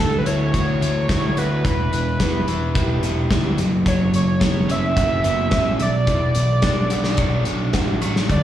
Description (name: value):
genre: indie rock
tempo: 108 BPM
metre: 4/4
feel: straight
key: unclear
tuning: A4 = 438 Hz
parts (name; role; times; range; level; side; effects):
- overdriven synth lead; melody; 0.0-8.4 s; A4 to E5; -24 LUFS; right 1 dB; distortion, slapback echo, analog delay
- crunchy overdriven guitar; riff; 0.0-8.4 s; B2 to C#5; -23 LUFS; equal; slapback echo
- fuzz picked electric bass; bass; 0.0-8.4 s; E1 to B2; -22 LUFS; equal; overdrive
- loose indie drum kit; drums; 0.3-8.4 s; hi-hat, kick drum, snare drum; -22 LUFS; equal; none
room: light reverb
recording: live gig heard through the venue's PA, recital hall reverb, studio reverb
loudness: -17 LUFS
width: side -11 dB against mid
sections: 0.0-8.4 A section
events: none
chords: 0.0 Dadd9; 1.6 Em; 3.6 F#sus4; 5.8 Bmadd9